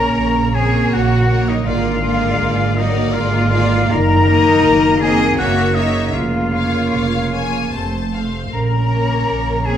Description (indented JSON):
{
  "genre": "classical, slow romantic movement for symphony orchestra",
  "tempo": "74-84 BPM",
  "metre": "3/4",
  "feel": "rubato",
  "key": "Bb minor",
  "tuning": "A4 = 441 Hz",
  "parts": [
    { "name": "rich studio violin section", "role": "melody", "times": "0.0-9.8 s", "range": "Db5 to A5", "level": "-27 LUFS", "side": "left 5 dB", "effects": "none" },
    { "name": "hollow concert flute", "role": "second line", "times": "0.0-9.8 s", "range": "Eb5 to Bb5", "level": "-24 LUFS", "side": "left 2 dB", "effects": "none" },
    { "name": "rich studio violin section", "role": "second line", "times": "0.0-9.8 s", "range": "Bb4 to Db5", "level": "-29 LUFS", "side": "left 5 dB", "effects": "none" },
    { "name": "warm oboe", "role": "second line", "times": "0.0-9.8 s", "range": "Eb5 to Bb5", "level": "-24 LUFS", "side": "equal", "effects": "none" },
    { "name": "rich studio viola section", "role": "accompaniment", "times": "0.0-9.8 s", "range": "A3 to Bb3", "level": "-23 LUFS", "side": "right 3 dB", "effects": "none" },
    { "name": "dark French horn section", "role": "sustained chords", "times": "0.0-9.8 s", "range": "Gb3 to Eb4", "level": "-22 LUFS", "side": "left 5 dB", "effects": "none" },
    { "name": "dark trombone section", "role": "sustained chords", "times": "0.0-9.8 s", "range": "C3 to Bb3", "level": "-25 LUFS", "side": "right 4 dB", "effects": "none" },
    { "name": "rich studio cello section", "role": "bass", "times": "0.0-9.8 s", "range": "Eb4 to Bb4", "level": "-21 LUFS", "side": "left 1 dB", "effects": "none" },
    { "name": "rich studio double bass section", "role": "bass", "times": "0.0-9.8 s", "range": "F1 to Bb1", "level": "-19 LUFS", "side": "right 2 dB", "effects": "none" }
  ],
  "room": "wet recital hall reverb, RT60 1.6 s",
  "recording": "none",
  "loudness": "-14 LUFS",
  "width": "side -9 dB against mid",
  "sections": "0.0-9.8 A section",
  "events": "none",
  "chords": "0.0 Bbm; 1.7 Bb7/Ab; 3.9 Ebm/Gb; 5.4 Gb7; 6.1 Bbm/F; 7.7 F; 8.5 Bbm",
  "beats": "0.15 0.91 | 1.66 2.41 3.13 | 3.90 4.64 5.37 | 6.14 6.93 7.73 | 8.53 9.29"
}